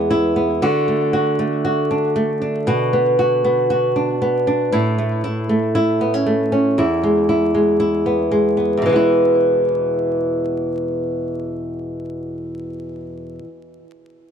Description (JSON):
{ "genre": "folktronica", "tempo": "117 BPM", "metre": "4/4", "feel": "straight", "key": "E mixolydian", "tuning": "A4 = 442 Hz", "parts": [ { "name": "flamenco guitar", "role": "solo", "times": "0.0-13.6 s", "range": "E2 to F#4", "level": "-16 LUFS", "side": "equal", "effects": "tape echo" } ], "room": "light reverb", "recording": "dry, close 1970s-style studio recording, vinyl crackle", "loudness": "-16 LUFS", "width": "side -8 dB against mid", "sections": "0.6-8.8 A section; 8.8-12.9 B section", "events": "none", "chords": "0.0 E; 0.6 D; 2.7 Bm; 4.7 A; 6.8 E", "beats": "0.11 | 0.62 1.13 1.65 2.16 | 2.67 3.18 3.70 4.21 | 4.72 5.24 5.75 6.26 | 6.77 7.29 7.80 8.31 | 8.82 9.34 9.85 10.36 | 10.88 11.39 11.90 12.41" }